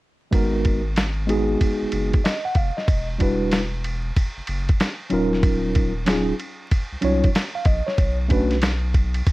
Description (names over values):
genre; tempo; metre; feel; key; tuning
hip hop, jazz-hop; 94 BPM; 4/4; swing 65% on 16ths; G# dorian; A4 = 441 Hz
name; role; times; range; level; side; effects
mellow tine electric piano; accompaniment; 0.3-8.6 s; F#3 to F#5; -22 LUFS; equal; medium stereo tremolo, plate reverb
saturated sub bass; bass; 0.3-9.2 s; D#1 to B#1; -25 LUFS; equal; none
lo-fi sampler-style drum kit; drums; 0.3-9.3 s; hi-hat, kick drum, ride cymbal, snare drum; -22 LUFS; equal; none
room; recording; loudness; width
light reverb; vinyl crackle; -19 LUFS; side -19 dB against mid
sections
0.3-9.3 A section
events
none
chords
0.3 G#m9; 2.9 Em9; 5.1 D#m9; 8.0 Bm9